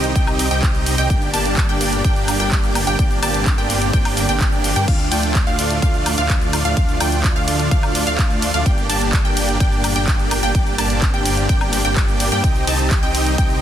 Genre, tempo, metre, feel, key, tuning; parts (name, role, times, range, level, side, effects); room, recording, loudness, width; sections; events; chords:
EDM, festival progressive house; 127 BPM; 4/4; straight; G minor; A4 = 440 Hz
lush unison pad; sustained chords; 0.0-13.6 s; A2 to G4; -27 LUFS; left 1 dB; chorus, sidechain pumping
wide unison pluck; arpeggios; 0.0-13.6 s; F5 to A5; -26 LUFS; equal; sidechain pumping, dub echo
supersaw chords; riff; 0.0-13.6 s; A3 to A5; -22 LUFS; right 1 dB; sidechain pumping, dub echo
wide detuned saw bass; bass; 0.0-13.6 s; G1 to G2; -23 LUFS; equal; chorus, sidechain pumping
big-room dance drum kit; drums; 0.0-13.6 s; crash cymbal, handclaps, hi-hat, ride cymbal, shaker, woodblock; -24 LUFS; equal
electronic kick drum; drums; 0.2-13.5 s; -18 LUFS; equal
swell; sound effects; 4.1-4.9 s; -31 LUFS; right 3 dB
digital ambience; dense, heavily limited modern master; -15 LUFS; side -10 dB against mid
0.0-13.6 A section
swell 4.1-4.9
0.0 Cm; 1.1 Gm; 4.9 Dm; 8.7 Gm; 12.4 Cm